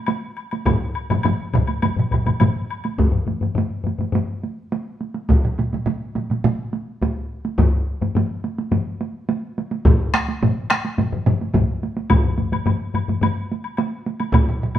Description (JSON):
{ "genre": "japanese traditional, taiko drum ensemble", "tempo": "105 BPM", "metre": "4/4", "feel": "straight", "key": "none", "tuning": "none", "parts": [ { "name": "solo taiko drums", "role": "percussion", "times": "0.1-14.8 s", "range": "none", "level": "-25 LUFS", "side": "right 5 dB", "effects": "none" }, { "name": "woodblock", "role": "percussion", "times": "0.1-3.0, 12.1-14.8 s", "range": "none", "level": "-28 LUFS", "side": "left 6 dB", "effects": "none" }, { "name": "solo taiko drums", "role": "percussion", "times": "0.7-13.3 s", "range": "none", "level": "-22 LUFS", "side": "left 4 dB", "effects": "none" }, { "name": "taiko ensemble", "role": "percussion", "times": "0.7-14.8 s", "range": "none", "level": "-23 LUFS", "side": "right 2 dB", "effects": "none" }, { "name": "taiko ensemble", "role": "percussion", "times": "0.7-14.5 s", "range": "none", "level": "-19 LUFS", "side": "equal", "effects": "none" } ], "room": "wet large studio reverb, RT60 1.0 s", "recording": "band playing live in one room", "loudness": "-19 LUFS", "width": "side -12 dB against mid", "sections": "0.0-3.0 A section; 3.0-14.8 B section", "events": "speeding up 0.0-14.8", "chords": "none" }